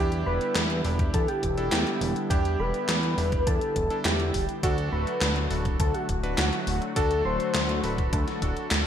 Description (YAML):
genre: synthwave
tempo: 103 BPM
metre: 4/4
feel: straight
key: unclear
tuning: A4 = 440 Hz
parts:
  - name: warm velvety synth lead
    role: melody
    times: 0.0-8.9 s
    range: F#4 to C5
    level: -31 LUFS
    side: left 1 dB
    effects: chorus, cassette tape, digital delay
  - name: FM electric piano with soft pad layer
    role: second line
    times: 0.0-8.9 s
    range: F#5 to C6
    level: -36 LUFS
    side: right 1 dB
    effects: chorus, digital delay
  - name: brassy analog pad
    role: sustained chords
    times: 0.0-8.9 s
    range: D3 to F#4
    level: -33 LUFS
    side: left 1 dB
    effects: chorus, sidechain pumping
  - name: bright electric grand piano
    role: stabs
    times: 0.0-8.8 s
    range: D4 to B4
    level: -35 LUFS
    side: right 2 dB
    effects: digital delay
  - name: fat analog bass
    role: bass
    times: 0.0-8.8 s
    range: D1 to E2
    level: -28 LUFS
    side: equal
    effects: tube saturation
  - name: gated 80s digital drum machine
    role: drums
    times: 0.1-8.8 s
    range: handclaps, hi-hat, snare drum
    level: -29 LUFS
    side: equal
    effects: gated reverb, gated reverb snare, studio reverb
  - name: electronic kick drum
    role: drums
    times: 1.0-8.5 s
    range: none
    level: -28 LUFS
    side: equal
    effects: overdrive, studio reverb
room: moderate lush hall reverb, RT60 1.7 s, digital ambience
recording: bright 1980s-style digital production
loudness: -23 LUFS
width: side -9 dB against mid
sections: 0.0-8.9 A section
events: none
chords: 0.0 Em7; 4.6 D